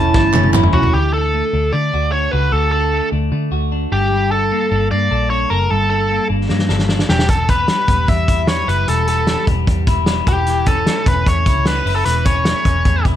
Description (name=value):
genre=jangly indie pop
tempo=151 BPM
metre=4/4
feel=straight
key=D major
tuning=A4 = 440 Hz
part: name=biting lead guitar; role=melody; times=0.0-13.0 s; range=F#4 to A5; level=-18 LUFS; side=equal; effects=overdrive, slapback echo
part: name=picked steel-string acoustic guitar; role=accompaniment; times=0.0-1.4 s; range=E3 to E4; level=-19 LUFS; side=right 6 dB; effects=none
part: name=hollow soft pad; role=sustained chords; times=0.0-0.9 s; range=none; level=barely audible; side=none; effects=none
part: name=semi-hollow electric guitar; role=arpeggios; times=0.0-13.2 s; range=E2 to A4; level=-22 LUFS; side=left 4 dB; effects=slapback echo
part: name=vintage muted picked electric bass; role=bass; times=0.0-13.2 s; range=E1 to D3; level=-18 LUFS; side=equal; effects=none
part: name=loose indie drum kit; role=drums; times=0.1-0.9, 6.5-13.1 s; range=hi-hat, kick drum, snare drum, toms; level=-17 LUFS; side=equal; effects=none
part: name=group handclap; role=percussion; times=0.3-0.6 s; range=none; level=-26 LUFS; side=right 4 dB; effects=none
room=light reverb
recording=dark, warm production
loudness=-13 LUFS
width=side -11 dB against mid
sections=0.9-13.2 A section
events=drum fill 0.1-0.9, 6.5-7.3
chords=0.0 A/E; 0.9 D; 3.9 Gmadd9; 7.1 Em; 10.3 A/E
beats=0.14 0.54 | 0.94 1.33 1.73 2.13 | 2.52 2.92 3.32 3.71 | 4.11 4.51 4.91 5.30 | 5.70 6.10 6.49 6.89 | 7.29 7.69 8.08 8.48 | 8.88 9.28 9.67 10.07 | 10.47 10.87 11.26 11.66 | 12.06 12.45 12.85